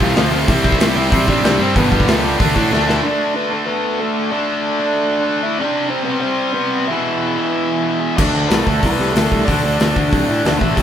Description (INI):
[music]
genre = punk rock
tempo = 186 BPM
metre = 4/4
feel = straight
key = unclear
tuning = A4 = 441 Hz
[part]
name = overdriven electric guitar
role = melody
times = 0.0-10.8 s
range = A3 to F5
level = -21 LUFS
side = equal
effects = none
[part]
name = distorted electric guitar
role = riff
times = 0.0-10.8 s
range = E2 to D4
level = -23 LUFS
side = right 6 dB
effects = overdrive
[part]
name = tight distorted guitar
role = riff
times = 0.0-10.8 s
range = E2 to D4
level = -20 LUFS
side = left 4 dB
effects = distortion
[part]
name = tight distorted guitar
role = riff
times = 0.0-3.0 s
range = F2 to D4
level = -20 LUFS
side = right 1 dB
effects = distortion
[part]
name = fuzz picked electric bass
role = bass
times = 0.0-3.0, 8.2-10.8 s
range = G1 to A2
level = -19 LUFS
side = equal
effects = overdrive
[part]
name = big rock drum kit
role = drums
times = 0.0-3.0, 8.2-10.8 s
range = crash cymbal, hi-hat, kick drum, snare drum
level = -18 LUFS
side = equal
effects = none
[sound]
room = moderate stone room reverb, RT60 1.1 s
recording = band playing live in one room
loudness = -14 LUFS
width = side -9 dB against mid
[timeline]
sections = 0.0-3.0 A section; 3.0-10.8 B section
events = drum fill 2.7-3.0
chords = 0.5 C; 1.8 G; 2.4 D5; 5.6 C5; 6.9 E5; 8.2 D5